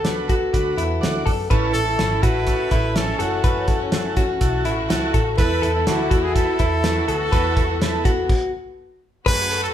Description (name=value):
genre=jangly indie pop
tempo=124 BPM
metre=4/4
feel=straight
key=unclear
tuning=A4 = 441 Hz
part: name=clear trumpet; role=melody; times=0.0-9.7 s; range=F#4 to B4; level=-25 LUFS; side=equal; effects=none
part: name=combo organ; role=accompaniment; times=0.0-9.6 s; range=A3 to D5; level=-28 LUFS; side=right 4 dB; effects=none
part: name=picked steel-string acoustic guitar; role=accompaniment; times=0.0-8.3 s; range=F#2 to A4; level=-29 LUFS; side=right 5 dB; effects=none
part: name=direct-recorded clean electric guitar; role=arpeggios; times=0.0-9.7 s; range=E4 to B4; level=-24 LUFS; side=left 4 dB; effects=none
part: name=vintage muted picked electric bass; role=bass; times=0.0-9.7 s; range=F#1 to F#2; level=-26 LUFS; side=equal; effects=none
part: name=cloth-damped thuddy drum kit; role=drums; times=0.0-9.6 s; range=crash cymbal, hi-hat, kick drum, snare drum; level=-22 LUFS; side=equal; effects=none
part: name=warm studio violin section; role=second line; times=1.5-9.7 s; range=B3 to F#4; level=-30 LUFS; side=equal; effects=none
room=moderate large studio reverb, RT60 1.0 s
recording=band playing live in one room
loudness=-18 LUFS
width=side -10 dB against mid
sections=0.0-9.3 A section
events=stop 8.3-9.3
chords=0.0 D6; 1.5 A; 3.2 F#m7; 5.4 Esus4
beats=0.05 0.53 1.02 | 1.50 1.99 2.47 2.96 | 3.44 3.93 4.42 4.90 | 5.38 5.87 6.36 6.84 | 7.33 7.81 8.30 8.78 | 9.27